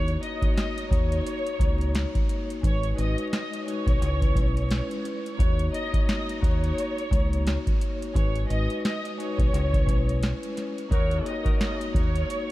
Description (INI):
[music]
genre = hip hop, boom-bap hip-hop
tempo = 87 BPM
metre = 4/4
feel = swing 58% on 16ths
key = unclear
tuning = A4 = 443 Hz
[part]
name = rich studio violin section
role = melody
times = 0.0-12.5 s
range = C#5 to D#5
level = -32 LUFS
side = equal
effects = high-pass filter, low-pass filter, diffuse ambient delay
[part]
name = vibraphone with soft mallets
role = accompaniment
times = 0.0-12.5 s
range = G#3 to C#5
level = -32 LUFS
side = left 2 dB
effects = high-pass filter, low-pass filter
[part]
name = deep dub fingered electric bass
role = bass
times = 0.0-12.2 s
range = G#1 to D#2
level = -26 LUFS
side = equal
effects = none
[part]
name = booming analog drum machine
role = drums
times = 0.1-12.5 s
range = hi-hat, kick drum, snare drum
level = -25 LUFS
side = equal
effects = none
[part]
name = edgy saxophone section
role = stabs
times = 10.9-11.4 s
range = D#4 to A#4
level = -38 LUFS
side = right 1 dB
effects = high-pass filter, low-pass filter, diffuse ambient delay
[sound]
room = light reverb, small room ambience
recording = vinyl crackle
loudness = -23 LUFS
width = side -17 dB against mid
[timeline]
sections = 0.0-12.5 A section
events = none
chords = 0.0 D#m7; 2.6 G#m7; 4.0 C#m7; 5.4 D#m7; 8.2 G#m7; 9.5 C#m7; 10.9 D#m7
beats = 0.57 1.26 1.95 | 2.64 3.33 4.01 4.71 | 5.39 6.08 6.77 7.46 | 8.15 8.84 9.53 10.22 | 10.91 11.60 12.29